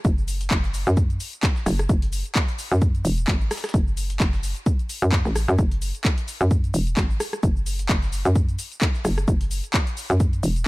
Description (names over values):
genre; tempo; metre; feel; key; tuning
bass house; 130 BPM; 4/4; swing 56% on 16ths; F# minor; A4 = 440 Hz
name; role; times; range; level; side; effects
hollow knocking FM bass; bass; 0.0-10.6 s; E1 to F#2; -22 LUFS; equal; tube saturation, sidechain pumping
breakbeat sampler-style drum kit; drums; 0.0-10.6 s; hi-hat, shaker, snare drum; -41 LUFS; left 1 dB; none
electronic kick drum; drums; 0.0-10.3 s; none; -21 LUFS; equal; overdrive
house drum kit; drums; 0.0-10.6 s; handclaps, hi-hat, rim click, shaker; -28 LUFS; equal; overdrive
room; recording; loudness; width
little or no reverb; none; -20 LUFS; side -20 dB against mid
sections
0.0-10.7 A section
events
none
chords
none